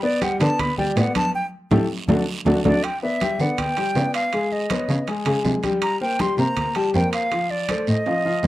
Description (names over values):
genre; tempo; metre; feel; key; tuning
Afro-Cuban jazz; 160 BPM; 4/4; straight; unclear; A4 = 440 Hz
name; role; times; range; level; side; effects
breathy silver concert flute; melody; 0.0-8.5 s; D5 to C6; -24 LUFS; equal; none
warm upright piano; accompaniment; 0.0-8.5 s; F3 to G#5; -24 LUFS; left 2 dB; none
congas; percussion; 0.0-8.5 s; none; -27 LUFS; left 1 dB; none
guiro; percussion; 0.2-8.5 s; none; -36 LUFS; right 6 dB; none
timbales; percussion; 0.2-8.5 s; none; -30 LUFS; right 6 dB; none
muted cello; bass; 0.4-8.5 s; D2 to D3; -21 LUFS; equal; none
room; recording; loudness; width
light reverb; dry, close 1970s-style studio recording; -19 LUFS; side -16 dB against mid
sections
0.0-2.8 A section; 2.8-8.5 B section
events
flute solo 0.0-2.8; band accent 1.3-2.8; drum fill 8.1-8.5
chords
0.0 Gadd9; 1.3 A5; 2.1 D; 2.8 G; 4.3 C#sus2; 5.8 C5; 7.3 F7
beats
0.22 0.59 0.97 | 1.34 1.71 2.09 2.46 | 2.83 3.21 3.58 3.96 | 4.33 4.70 5.08 5.45 | 5.83 6.20 6.57 6.95 | 7.32 7.69 8.06 8.44